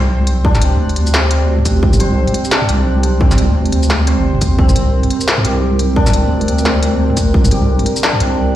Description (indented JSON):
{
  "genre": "half-time drum and bass",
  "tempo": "174 BPM",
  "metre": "4/4",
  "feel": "swing 60% on 16ths, half-time",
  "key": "unclear",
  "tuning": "A4 = 440 Hz",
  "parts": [
    { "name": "dark analog pad", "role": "sustained chords", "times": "0.0-8.6 s", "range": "G3 to Bb4", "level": "-20 LUFS", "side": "right 4 dB", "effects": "chorus, vintage 12-bit sampler grit, sidechain pumping" },
    { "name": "santur", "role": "arpeggios", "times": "0.0-8.6 s", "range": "C4 to C5", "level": "-21 LUFS", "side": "left 3 dB", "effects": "dub echo" },
    { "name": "deep soft wobble bass", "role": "bass", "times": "0.0-8.6 s", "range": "G1 to Eb2", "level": "-14 LUFS", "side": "equal", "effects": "chorus" },
    { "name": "industrial drum kit", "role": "drums", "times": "0.3-8.3 s", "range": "hi-hat, shaker, snare drum, toms", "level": "-18 LUFS", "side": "equal", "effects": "studio reverb" },
    { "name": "electronic kick drum", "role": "drums", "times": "0.4-7.4 s", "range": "none", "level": "-14 LUFS", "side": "equal", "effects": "studio reverb" }
  ],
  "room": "light reverb",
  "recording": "played on a big sound system in a bare room, large studio reverb, faint mains hum",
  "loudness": "-11 LUFS",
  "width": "side -12 dB against mid",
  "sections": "0.0-8.6 A section",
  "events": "none",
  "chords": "0.0 C5"
}